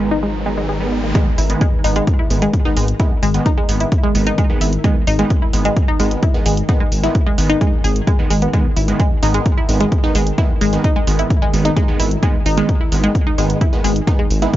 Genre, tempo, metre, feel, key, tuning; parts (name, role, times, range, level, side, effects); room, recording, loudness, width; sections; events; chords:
driving peak-time techno; 130 BPM; 4/4; straight; G# minor; A4 = 437 Hz
supersaw stab; stabs; 0.0-14.5 s; D#3 to B3; -24 LUFS; right 3 dB; phaser, sidechain pumping, analog delay
dark detuned saw bass; bass; 0.0-14.5 s; G#1; -18 LUFS; equal; sidechain pumping
deep dark ambient pad; drone; 0.0-14.6 s; G#2 to D#3; -27 LUFS; left 1 dB; chorus, built-in reverb, sidechain pumping
riser; sound effects; 0.0-1.2 s; -28 LUFS; equal
granular cloud pad; texture; 0.0-1.2 s; D#4 to A#5; -32 LUFS; left 2 dB; built-in reverb, sidechain pumping
analog pluck; riff; 0.1-14.5 s; G#3 to G#4; -20 LUFS; equal; chorus, phaser, sidechain pumping, analog delay
electronic hi-hat; drums; 1.1-14.6 s; -27 LUFS; right 2 dB; sidechain pumping on hats
electronic kick drum; drums; 1.1-14.6 s; -16 LUFS; equal
little or no reverb; dry, gritty hardware recording, nothing above 7.6 kHz; -14 LUFS; side -14 dB against mid
0.0-1.2 A section; 1.2-14.6 B section
riser 0.0-1.2; drop 1.2-14.6
0.0 G#m